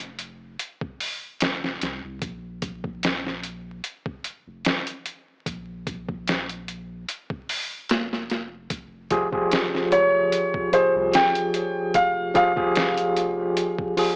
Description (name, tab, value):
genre	trip hop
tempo	74 BPM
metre	4/4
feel	swing 54% on 16ths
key	F minor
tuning	A4 = 445 Hz
part	soft dub sub bass	bass	0.0-13.5 s	F1 to C2	-40 LUFS	equal	transformer saturation
part	boom bap sampler-style drum kit	drums	0.0-14.2 s	hi-hat, kick drum, snare drum	-26 LUFS	equal	studio reverb
part	overdriven tine electric piano	accompaniment	9.1-14.2 s	F3 to Ab4	-23 LUFS	equal	tremolo, vintage 12-bit sampler grit, tape echo
part	felt-muted upright piano	melody	9.9-13.1 s	C5 to G5	-21 LUFS	equal	tape echo
room	light reverb, digital ambience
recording	dry, gritty hardware recording, vinyl crackle, AM radio sound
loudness	-21 LUFS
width	side -37 dB against mid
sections	0.0-14.2 A section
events	none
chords	0.0 F5; 2.2 Bb5; 8.7 Fmadd9